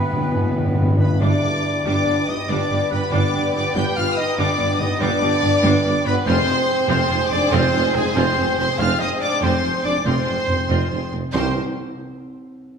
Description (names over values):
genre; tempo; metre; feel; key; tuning
cinematic, heroic adventure film score; 94 BPM (dotted quarters); 12/8; straight; unclear; A4 = 440 Hz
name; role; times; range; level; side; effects
clear symphonic violin section; melody; 0.0-11.6 s; B4 to G6; -27 LUFS; left 2 dB; none
mellow hollow concert flute; second line; 0.0-11.6 s; Ab4 to C6; -29 LUFS; left 2 dB; none
rich studio violin section; second line; 0.0-11.6 s; G4 to C5; -31 LUFS; left 2 dB; none
warm oboe; second line; 0.0-1.0 s; B4; -34 LUFS; right 2 dB; none
clear symphonic viola section; accompaniment; 0.0-11.6 s; G3 to F4; -29 LUFS; equal; none
mellow French horn section; sustained chords; 0.0-11.5 s; Ab3 to G4; -26 LUFS; left 2 dB; none
warm trombone section; sustained chords; 0.0-11.5 s; G2 to C4; -30 LUFS; right 3 dB; none
bright trumpet section; stabs; 0.0-11.5 s; Ab4 to G5; -26 LUFS; right 1 dB; none
warm symphonic cello section; bass; 0.0-11.6 s; C2 to B3; -27 LUFS; right 2 dB; none
timpani; percussion; 0.0-1.2, 11.3-11.5 s; G2 to C3; -22 LUFS; left 1 dB; none
mellow tuba; bass; 0.1-11.5 s; F1 to C2; -27 LUFS; right 4 dB; none
rich studio double bass section; bass; 0.1-11.6 s; F1 to G2; -26 LUFS; right 3 dB; none
warm clarinet; second line; 0.3-11.5 s; Ab4 to G5; -29 LUFS; left 2 dB; none
room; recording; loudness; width
wet recital hall reverb, RT60 1.7 s; small room ambience; -17 LUFS; side -6 dB against mid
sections
0.0-1.2 A section; 1.2-11.3 B section; 11.3-12.8 C section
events
timpani fill 0.0-1.2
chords
0.0 G; 6.3 Fm; 11.3 Cm7